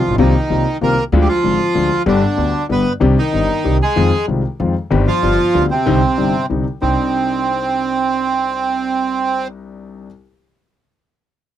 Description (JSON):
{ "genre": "tango", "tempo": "190 BPM", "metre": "3/4", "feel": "rubato", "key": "C minor", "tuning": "A4 = 440 Hz", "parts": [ { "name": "bandoneon", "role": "melody", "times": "0.0-9.5 s", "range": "C3 to B4", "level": "-16 LUFS", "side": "right 2 dB", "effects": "none" }, { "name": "warm concert grand piano", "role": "accompaniment", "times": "0.1-10.1 s", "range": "G1 to G4", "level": "-19 LUFS", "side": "left 4 dB", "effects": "none" }, { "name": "upright bass", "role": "bass", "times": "0.1-6.9 s", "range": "G1 to F2", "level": "-19 LUFS", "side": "right 2 dB", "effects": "none" } ], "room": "light reverb", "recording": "dry, close 1970s-style studio recording", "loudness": "-14 LUFS", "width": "side -11 dB against mid", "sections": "0.0-6.8 A section; 6.8-8.7 B section", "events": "none", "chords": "0.2 F7sus4/C; 1.1 Ddim; 2.1 G; 3.0 Cmadd9; 4.0 Fm7; 4.9 Cm/G; 5.2 G7; 5.9 Cmadd9" }